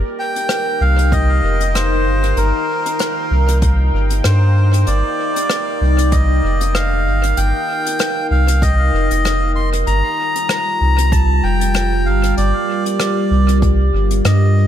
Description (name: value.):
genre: ambient dub.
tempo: 96 BPM.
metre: 4/4.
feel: swing 56% on 16ths.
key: unclear.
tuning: A4 = 442 Hz.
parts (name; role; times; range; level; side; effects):
deep dark ambient pad; sustained chords; 0.0-14.7 s; G3 to G5; -21 LUFS; equal; chorus, built-in reverb.
soft dub sub bass; bass; 0.0-14.7 s; F1 to G2; -14 LUFS; equal; none.
melodica; melody; 0.2-14.7 s; Bb4 to C6; -20 LUFS; equal; dub echo.
soft brush drum kit; drums; 0.4-14.4 s; hi-hat, rim click; -24 LUFS; left 2 dB; dub echo.
electronic kick drum; drums; 1.1-13.8 s; none; -18 LUFS; equal; none.
room: light reverb, small room reverb.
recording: none.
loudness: -13 LUFS.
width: side -10 dB against mid.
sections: 0.0-14.7 A section.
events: none.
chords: 0.0 Ebadd9; 9.9 Gm7.